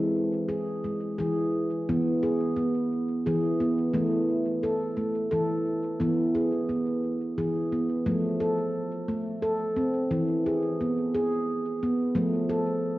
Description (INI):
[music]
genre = world meditative, meditative tuned percussion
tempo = 88 BPM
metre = 3/4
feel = straight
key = unclear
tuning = A4 = 439 Hz
[part]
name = handpan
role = solo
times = 0.0-13.0 s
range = E3 to A4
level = -25 LUFS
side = equal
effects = tape echo
[sound]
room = wet scoring stage reverb, RT60 2.0 s, small room ambience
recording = worn, warbling old tape, cassette tape, warbly pitch drift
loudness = -25 LUFS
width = side -16 dB against mid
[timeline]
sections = 0.0-8.1 A section; 8.1-13.0 B section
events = none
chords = 0.0 E; 3.9 A5/E; 6.0 E; 8.1 F; 10.1 E; 12.2 F